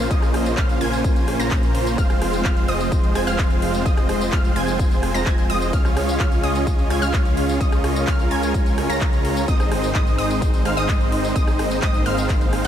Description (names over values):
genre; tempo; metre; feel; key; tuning
EDM, festival progressive house; 128 BPM; 4/4; straight; unclear; A4 = 439 Hz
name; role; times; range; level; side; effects
lush unison pad; sustained chords; 0.0-12.7 s; Db3 to C5; -28 LUFS; equal; chorus, sidechain pumping
wide unison pluck; arpeggios; 0.0-12.7 s; Eb6 to Bb6; -30 LUFS; equal; sidechain pumping, tape echo
supersaw chords; riff; 0.0-12.7 s; Ab3 to Bb5; -23 LUFS; right 1 dB; sidechain pumping, tape echo
wide detuned saw bass; bass; 0.0-12.7 s; F1 to Db2; -26 LUFS; equal; chorus, tube saturation, sidechain pumping
big-room dance drum kit; drums; 0.0-12.7 s; handclaps, hi-hat, rim click, tambourine; -30 LUFS; equal; none
downlifter; sound effects; 0.0-2.0 s; none; -38 LUFS; left 1 dB; none
electronic kick drum; drums; 0.1-12.4 s; none; -19 LUFS; equal; none
room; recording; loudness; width
digital ambience; none; -17 LUFS; side -10 dB against mid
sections
0.0-12.7 A section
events
none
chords
0.0 Bbmadd9; 2.0 Fm; 5.7 Db; 9.5 Ab